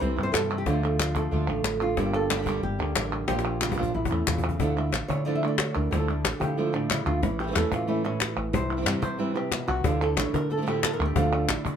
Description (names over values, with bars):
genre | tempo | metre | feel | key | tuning
flamenco | 183 BPM | 4/4 | straight | unclear | A4 = 440 Hz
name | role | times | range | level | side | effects
flamenco guitar | melody | 0.0-11.8 s | G2 to E5 | -29 LUFS | right 1 dB | none
flamenco guitar | stabs | 0.0-11.8 s | C3 to G4 | -31 LUFS | right 3 dB | none
woody fretless electric bass | bass | 0.0-11.8 s | G1 to D3 | -30 LUFS | left 1 dB | none
palmas hand claps | percussion | 0.2-11.8 s | none | -31 LUFS | left 1 dB | none
cajon | percussion | 0.3-11.8 s | none | -30 LUFS | left 4 dB | none
room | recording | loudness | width
moderate studio reverb, RT60 0.5 s | band playing live in one room | -24 LUFS | side -8 dB against mid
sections
0.0-4.6 A section; 4.6-11.8 B section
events
drum fill 3.3-4.6; nylon-string guitar solo 4.6-11.8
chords
0.0 C; 0.7 Dm; 2.0 Gm; 3.3 Bb; 3.9 A; 4.6 Dmadd9; 7.2 A; 8.5 C; 9.8 Dmadd9